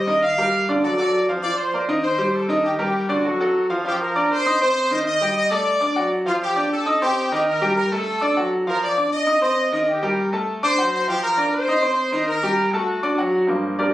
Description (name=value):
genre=latin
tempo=199 BPM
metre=4/4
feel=straight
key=unclear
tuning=A4 = 439 Hz
part: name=bright horn section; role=melody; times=0.0-13.2 s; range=F4 to F5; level=-22 LUFS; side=equal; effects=plate reverb
part: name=bright concert grand piano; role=accompaniment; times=0.0-13.9 s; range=G2 to Eb6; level=-20 LUFS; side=equal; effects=none
room=wet studio reverb, RT60 0.9 s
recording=recorded on a phone in the room, club reverb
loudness=-18 LUFS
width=side -14 dB against mid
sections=0.0-3.9 A section; 3.9-13.5 B section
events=none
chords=0.2 Eb; 0.8 D; 1.4 Cm11; 2.0 Cm; 2.6 Eb; 3.2 F#mmaj7; 3.9 Bbadd9/F; 4.5 Cm; 5.1 Eb; 5.7 D; 6.3 G5; 6.9 Cm; 7.5 Eb; 8.1 D; 8.7 Bbadd11/F; 9.3 Cm; 9.9 Eb; 10.5 D7; 11.1 Bb69/F; 11.7 Cm; 12.3 Eb; 12.9 D